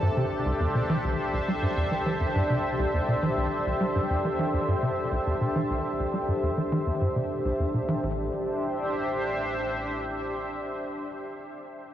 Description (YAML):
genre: ambient, sequencer-driven space music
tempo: 103 BPM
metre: 4/4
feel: straight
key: A minor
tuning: A4 = 440 Hz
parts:
  - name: sweeping resonant pad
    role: sustained chords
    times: 0.0-11.1 s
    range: D4 to E5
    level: -28 LUFS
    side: equal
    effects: chorus
  - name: tight sequencer bass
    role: riff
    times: 0.0-8.3 s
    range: A1 to G3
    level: -28 LUFS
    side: equal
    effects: lush chorus, ping-pong delay
  - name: analog drone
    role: bass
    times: 0.2-9.7 s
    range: A1 to C2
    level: -44 LUFS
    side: equal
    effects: none
  - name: bubbling stepped-filter texture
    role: texture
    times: 0.0-8.0 s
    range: A4 to A5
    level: -38 LUFS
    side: equal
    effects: chorus, built-in reverb
room: wet huge ambient reverb, RT60 8.3 s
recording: worn, warbling old tape, cassette tape, warbly pitch drift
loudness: -25 LUFS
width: side -11 dB against mid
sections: 0.0-8.0 A section; 8.0-10.4 B section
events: filter sweep on analog synth bass 0.0-8.0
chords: 0.0 C; 8.0 Am